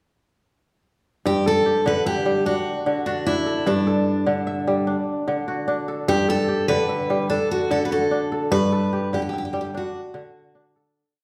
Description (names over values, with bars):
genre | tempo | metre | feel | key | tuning
west african traditional, West African string and xylophone music | 99 BPM (dotted quarters) | 12/8 | straight | G major | A4 = 440 Hz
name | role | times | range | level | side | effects
picked steel-string acoustic guitar | melody | 1.3-10.7 s | D4 to B4 | -25 LUFS | equal | none
kora | arpeggios | 1.3-11.2 s | G2 to E5 | -25 LUFS | equal | none
room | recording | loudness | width
wet recital hall reverb, RT60 1.7 s | heard from further back in the room | -22 LUFS | mono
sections
1.2-11.0 A section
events
fade-out 8.5-11.0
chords
1.2 G5; 2.5 D; 3.7 G5; 4.9 D; 6.1 G; 7.3 D; 8.5 G; 9.7 D